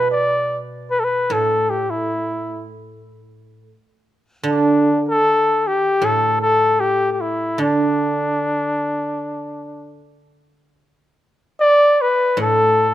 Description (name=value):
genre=chinese traditional, Chinese chamber ensemble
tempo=76 BPM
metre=4/4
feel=straight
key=D zhi mode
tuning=A4 = 440 Hz
part: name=warm flugelhorn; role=melody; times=0.0-12.9 s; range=D4 to D5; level=-17 LUFS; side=left 1 dB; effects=none
part: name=guzheng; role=accompaniment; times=0.0-12.9 s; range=A2 to G3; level=-22 LUFS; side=right 3 dB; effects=none
room=light reverb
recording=close, detailed microphones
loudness=-16 LUFS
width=side -13 dB against mid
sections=0.0-10.8 A section; 10.8-12.9 B section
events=none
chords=none